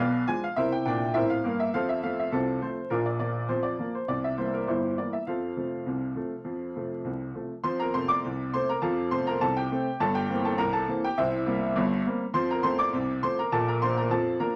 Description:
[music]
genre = ragtime piano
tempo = 102 BPM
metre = 2/4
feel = straight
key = F major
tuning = A4 = 440 Hz
[part]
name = clear upright piano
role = solo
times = 0.0-14.6 s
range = G1 to D6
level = -28 LUFS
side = equal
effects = none
[sound]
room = moderate studio reverb, RT60 0.8 s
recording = vinyl crackle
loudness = -28 LUFS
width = mono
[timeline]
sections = 0.0-7.6 A section; 7.6-14.6 B section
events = none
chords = 0.0 Bdim7; 0.6 C7; 1.7 F; 2.9 Bb; 4.1 C7; 5.3 F; 10.0 C7/G; 11.2 C7; 12.3 F; 13.5 Bb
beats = | 0.56 1.15 | 1.73 2.32 | 2.90 3.49 | 4.08 4.67 | 5.26 5.86 | 6.46 7.05 | 7.64 8.23 | 8.82 9.41 | 9.99 10.58 | 11.16 11.75 | 12.34 12.92 | 13.51 14.10

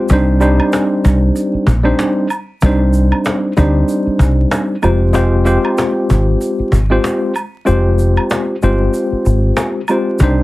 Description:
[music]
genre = hip hop, boom-bap hip-hop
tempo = 95 BPM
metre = 4/4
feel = swing 55% on 16ths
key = C minor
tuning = A4 = 438 Hz
[part]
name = tine electric piano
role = accompaniment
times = 0.0-10.4 s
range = G3 to C5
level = -15 LUFS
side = left 1 dB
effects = medium stereo tremolo, cassette tape, high-pass filter, low-pass filter
[part]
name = deep dub fingered electric bass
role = bass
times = 0.1-10.4 s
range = F1 to D2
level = -12 LUFS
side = equal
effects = none
[part]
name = cajon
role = drums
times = 0.1-10.4 s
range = none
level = -20 LUFS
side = equal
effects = none
[part]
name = egg shaker and woodblock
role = percussion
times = 0.1-10.4 s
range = none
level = -24 LUFS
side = right 1 dB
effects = none
[sound]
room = light reverb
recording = heavily compressed radio sound, multiband compression, vinyl crackle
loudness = -12 LUFS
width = side -18 dB against mid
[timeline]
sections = 0.1-10.4 A section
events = kick muted 7.7-10.2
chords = 0.1 Cmadd9; 4.8 Fmadd9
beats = | 0.10 0.73 1.36 1.99 | 2.62 3.25 3.89 4.52 | 5.15 5.78 6.41 7.04 | 7.68 8.31 8.94 9.57 | 10.20

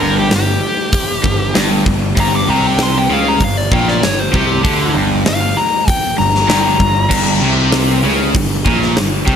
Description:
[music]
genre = hard rock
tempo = 97 BPM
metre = 4/4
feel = straight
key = G minor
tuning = A4 = 439 Hz
[part]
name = dark smooth lead guitar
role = melody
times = 0.0-8.3 s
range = G4 to D6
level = -18 LUFS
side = left 3 dB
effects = overdrive, slapback echo
[part]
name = cranked stack guitar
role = riff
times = 0.0-9.4 s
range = G2 to D3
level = -16 LUFS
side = equal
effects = overdrive, spring reverb
[part]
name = fuzz picked electric bass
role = bass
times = 0.0-9.4 s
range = G1 to D2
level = -19 LUFS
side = equal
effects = overdrive
[part]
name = huge arena drum kit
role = drums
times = 0.3-9.4 s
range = crash cymbal, hi-hat, kick drum, snare drum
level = -16 LUFS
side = equal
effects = none
[sound]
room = light reverb, small room ambience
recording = none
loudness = -11 LUFS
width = side -8 dB against mid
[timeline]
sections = 0.0-9.4 A section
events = lead electric guitar solo 0.0-9.4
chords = 0.0 Gm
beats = 0.32 0.94 1.55 | 2.17 2.79 3.41 4.03 | 4.65 5.27 5.89 6.51 | 7.13 7.74 8.36 8.98

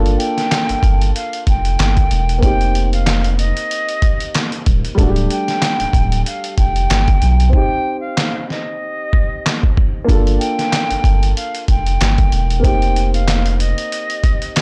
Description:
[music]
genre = hip hop, boom-bap hip-hop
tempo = 94 BPM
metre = 4/4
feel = swing 55% on 16ths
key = G minor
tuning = A4 = 440 Hz
[part]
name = dark upright piano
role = accompaniment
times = 0.0-14.6 s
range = G3 to A4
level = -26 LUFS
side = equal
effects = high-pass filter, low-pass filter
[part]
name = saturated sub bass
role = bass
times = 0.0-13.7 s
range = D1 to B1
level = -18 LUFS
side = equal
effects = transformer saturation
[part]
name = trip hop sampler-style drum kit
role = drums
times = 0.1-14.6 s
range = handclaps, hi-hat, kick drum, snare drum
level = -19 LUFS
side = equal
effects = vintage 12-bit sampler grit
[part]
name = concert flute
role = melody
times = 0.2-14.6 s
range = Eb5 to G5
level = -24 LUFS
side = equal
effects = high-pass filter, low-pass filter
[sound]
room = little or no reverb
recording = dry, gritty hardware recording, cassette tape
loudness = -16 LUFS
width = mono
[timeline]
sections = 0.0-14.6 A section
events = break 7.5-10.1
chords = 0.0 Gm7; 2.4 F7sus4; 5.0 Dsus4; 7.5 Cm; 10.1 Gm7; 12.6 F7sus4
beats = 0.51 1.15 1.79 | 2.43 3.06 3.70 4.34 | 4.98 5.62 6.26 6.89 | 7.53 8.17 8.81 9.45 | 10.09 10.72 11.36 12.00 | 12.64 13.28 13.92 14.55

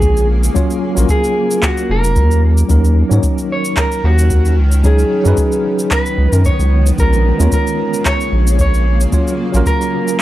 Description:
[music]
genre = sunset chillout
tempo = 112 BPM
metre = 4/4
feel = swing 55% on 16ths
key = unclear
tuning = A4 = 441 Hz
[part]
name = electric guitar at the edge of break-up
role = melody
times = 0.0-10.2 s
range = Gb4 to Db5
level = -19 LUFS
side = right 1 dB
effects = tape echo
[part]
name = tine electric piano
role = accompaniment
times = 0.0-10.2 s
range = Gb3 to Db5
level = -20 LUFS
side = equal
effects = medium stereo tremolo, auto-pan
[part]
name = shimmering ambient pad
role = sustained chords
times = 0.0-10.2 s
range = Db3 to Ab4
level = -25 LUFS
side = equal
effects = chorus, built-in reverb
[part]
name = round analog bass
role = bass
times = 0.0-9.6 s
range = F1 to Ab2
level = -12 LUFS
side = equal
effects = none
[part]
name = electronic kick drum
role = drums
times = 0.0-9.8 s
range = none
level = -16 LUFS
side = equal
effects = overdrive
[part]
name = electronic shaker and handclaps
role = drums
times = 0.0-10.2 s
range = none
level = -22 LUFS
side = equal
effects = overdrive
[sound]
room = little or no reverb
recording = dry, gritty hardware recording, cassette tape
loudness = -11 LUFS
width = side -14 dB against mid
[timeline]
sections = 0.0-10.2 A section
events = none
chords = 0.0 Bbm7; 0.6 Gbmaj7/Bb; 2.7 Ebm7; 4.6 Db9sus4; 7.0 Bbm7; 9.1 Gbmaj7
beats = 0.02 | 0.56 1.09 1.63 2.16 | 2.70 3.23 3.77 4.31 | 4.84 5.38 5.91 6.45 | 6.99 7.52 8.06 8.59 | 9.13 9.66 10.20

